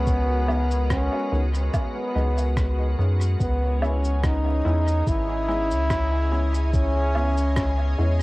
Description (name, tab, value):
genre	ambient dub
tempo	72 BPM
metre	4/4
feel	swing 54% on 16ths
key	C# dorian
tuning	A4 = 439 Hz
part	warm trombone	melody	0.0-8.1 s	B3 to E4	-26 LUFS	equal	cassette tape, dub echo
part	soft additive organ-like pad	sustained chords	0.0-8.2 s	G#3 to D#5	-34 LUFS	equal	ensemble chorus, built-in reverb, vintage 12-bit sampler grit, cassette tape
part	soft dub sub bass	bass	0.0-8.2 s	G#1 to F#2	-22 LUFS	equal	none
part	electronic kick drum	drums	0.1-7.7 s	none	-25 LUFS	equal	none
part	electronic shaker, woodblock and rim click	drums	0.1-8.2 s	none	-34 LUFS	equal	dub echo
part	filtered dub chord stab	stabs	0.5-8.2 s	D#3 to E4	-34 LUFS	left 1 dB	chorus, cassette tape, dub echo
room	light reverb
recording	home recording on cassette, vinyl crackle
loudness	-20 LUFS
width	side -20 dB against mid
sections	0.0-8.2 A section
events	none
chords	0.0 G#m7; 3.4 C#m7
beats	| 0.07 0.90 1.74 2.57 | 3.40 4.24 5.07 5.90 | 6.74 7.57